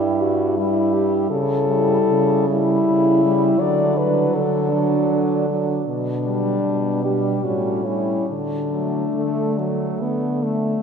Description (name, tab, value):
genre	classical, lyrical piece for horn quartet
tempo	69-84 BPM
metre	3/4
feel	rubato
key	D major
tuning	A4 = 440 Hz
part	warm French horn	melody	0.0-10.0 s	D4 to D5	-22 LUFS	left 5 dB	none
part	clear French horn	second line	0.0-10.8 s	A3 to E4	-24 LUFS	right 8 dB	none
part	warm French horn	accompaniment	0.0-10.8 s	F#3 to B3	-24 LUFS	left 2 dB	none
part	warm French horn	bass	0.0-10.7 s	G2 to D3	-24 LUFS	right 3 dB	none
room	wet cathedral reverb, RT60 4.5 s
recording	minimal, uncompressed stereo recording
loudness	-17 LUFS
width	side -6 dB against mid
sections	0.0-10.8 A section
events	none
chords	0.0 Em/G; 1.3 A7/C#; 3.6 D; 5.9 G/B; 7.4 A7; 8.3 D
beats	0.59 | 1.31 2.08 2.88 | 3.61 4.35 5.10 | 5.87 6.65 7.45 | 8.28 9.15 10.01